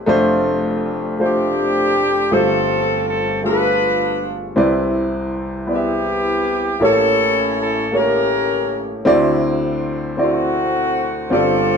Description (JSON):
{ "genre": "gospel", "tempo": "53 BPM (dotted quarters)", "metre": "6/8", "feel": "straight", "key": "unclear", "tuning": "A4 = 444 Hz", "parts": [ { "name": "warm horn section", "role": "melody", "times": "0.0-11.8 s", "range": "A3 to B4", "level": "-18 LUFS", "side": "left 1 dB", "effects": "none" }, { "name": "warm upright piano", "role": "accompaniment", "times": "0.0-11.8 s", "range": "F1 to E5", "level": "-17 LUFS", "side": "equal", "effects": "none" } ], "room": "moderate studio reverb, RT60 0.7 s", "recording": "band playing live in one room", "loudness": "-15 LUFS", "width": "side -6 dB against mid", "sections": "0.0-11.8 A section", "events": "none", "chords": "0.1 F6; 2.3 G9sus4; 4.6 Cmaj9; 6.8 A7b9; 9.1 D9" }